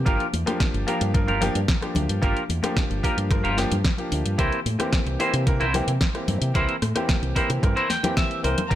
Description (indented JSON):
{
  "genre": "nu-disco, nu disco",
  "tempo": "111 BPM",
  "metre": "4/4",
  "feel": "straight",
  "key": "unclear",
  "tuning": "A4 = 440 Hz",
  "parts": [
    { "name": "bright baby grand piano", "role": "accompaniment", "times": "0.0-8.8 s", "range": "E3 to Bb4", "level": "-27 LUFS", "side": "left 1 dB", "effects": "sidechain pumping, tape echo" },
    { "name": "fingered electric bass with an envelope filter", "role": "bass", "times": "0.0-8.8 s", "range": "G1 to C3", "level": "-25 LUFS", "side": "equal", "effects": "none" },
    { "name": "clean electric guitar", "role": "riff", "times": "0.1-8.8 s", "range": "E4 to G5", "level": "-27 LUFS", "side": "right 1 dB", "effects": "analog chorus, low-pass filter, tape echo" },
    { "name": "electronic kick drum", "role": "drums", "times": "0.1-8.8 s", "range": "none", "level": "-23 LUFS", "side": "equal", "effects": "none" },
    { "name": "house drum kit", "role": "drums", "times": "0.1-8.8 s", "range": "hi-hat, rim click, snare drum", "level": "-29 LUFS", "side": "equal", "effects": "none" },
    { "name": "congas", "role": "percussion", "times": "0.3-8.7 s", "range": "none", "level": "-31 LUFS", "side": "left 3 dB", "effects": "none" },
    { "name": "dark studio string section", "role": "sustained chords", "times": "8.7-8.8 s", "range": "G4 to Bb5", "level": "-29 LUFS", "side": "left 4 dB", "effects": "sidechain pumping" }
  ],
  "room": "light reverb, small room ambience",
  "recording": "none",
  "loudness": "-20 LUFS",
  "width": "side -12 dB against mid",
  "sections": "0.0-8.8 A section",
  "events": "clean electric guitar fill 7.6-8.7",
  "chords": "0.1 Gm7; 4.4 C7"
}